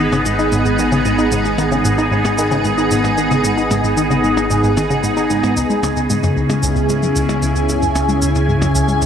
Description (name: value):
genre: ambient, sequencer-driven space music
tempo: 113 BPM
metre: 4/4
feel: straight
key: G# minor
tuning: A4 = 440 Hz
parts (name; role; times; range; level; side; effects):
- evolving wavetable pad; sustained chords; 0.0-9.1 s; C#3 to G#5; -16 LUFS; equal; ensemble chorus, built-in reverb, phaser, shimmer reverb
- tight sequenced synth; riff; 0.0-9.1 s; C#2 to D#4; -19 LUFS; equal; chorus, ping-pong delay, shimmer reverb
- analog drone; bass; 0.0-9.1 s; G#1 to C#2; -24 LUFS; equal; chorus, phaser
- bubbling stepped-filter texture; texture; 0.0-9.1 s; G#3 to B4; -24 LUFS; equal; chorus, built-in reverb, shimmer reverb
- percussion blips and shaker; percussion; 0.1-9.1 s; none; -26 LUFS; left 1 dB; ping-pong delay
room: wet spring reverb, RT60 2.9 s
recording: echo-heavy mix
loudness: -14 LUFS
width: side -8 dB against mid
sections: 0.0-5.6 A section; 5.6-9.1 B section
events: none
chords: 0.0 G#m; 5.6 C#m